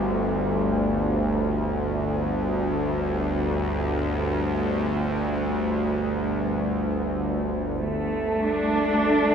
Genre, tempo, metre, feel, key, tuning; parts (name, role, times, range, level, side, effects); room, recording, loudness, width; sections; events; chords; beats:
dark ambient drone; free time; A4 = 440 Hz
bowed-like drone; drone; 0.0-9.3 s; G1 to D2; -23 LUFS; equal; built-in reverb
muted chamber cello section; sustained chords; 7.8-9.3 s; A3 to D4; -22 LUFS; right 1 dB
wind-like tuned noise texture; texture; 8.0-9.3 s; A4; -28 LUFS; left 1 dB; built-in reverb
wet cathedral reverb, RT60 6.1 s; dreamy mix soaked in reverb; -22 LUFS; side -7 dB against mid
0.0-7.8 A section; 7.8-9.3 B section
0.0 G5; 7.8 Gsus2
free time